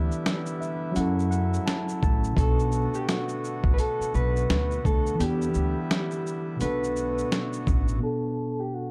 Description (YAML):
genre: lo-fi hip hop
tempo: 85 BPM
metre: 4/4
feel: swing 59% on 16ths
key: B minor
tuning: A4 = 437 Hz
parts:
  - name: electric guitar through a small old amp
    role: melody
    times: 0.0-8.9 s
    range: F#4 to E5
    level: -33 LUFS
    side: equal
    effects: low-pass filter
  - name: tine electric piano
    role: accompaniment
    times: 0.0-8.9 s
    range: B2 to A5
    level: -32 LUFS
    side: equal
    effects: low-pass filter
  - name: accordion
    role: sustained chords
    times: 0.0-8.0 s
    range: C#3 to F#4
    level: -39 LUFS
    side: equal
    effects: none
  - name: upright bass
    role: bass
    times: 0.0-8.0 s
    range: A1 to F#2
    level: -29 LUFS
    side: equal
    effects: none
  - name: dusty soul sampler-style drum kit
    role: drums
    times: 0.1-8.0 s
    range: hi-hat, kick drum, shaker, snare drum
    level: -29 LUFS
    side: equal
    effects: none
room: light reverb, digital ambience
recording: dark, warm production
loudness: -26 LUFS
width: mono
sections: 0.0-8.0 A section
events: tine electric piano fill 0.2-2.4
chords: 0.0 Em7; 1.0 F#m7; 2.4 Bm7; 5.2 Em7; 6.6 Bm7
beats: 0.25 0.95 1.66 | 2.37 3.07 3.78 4.48 | 5.19 5.89 6.60 7.31 | 8.01 8.72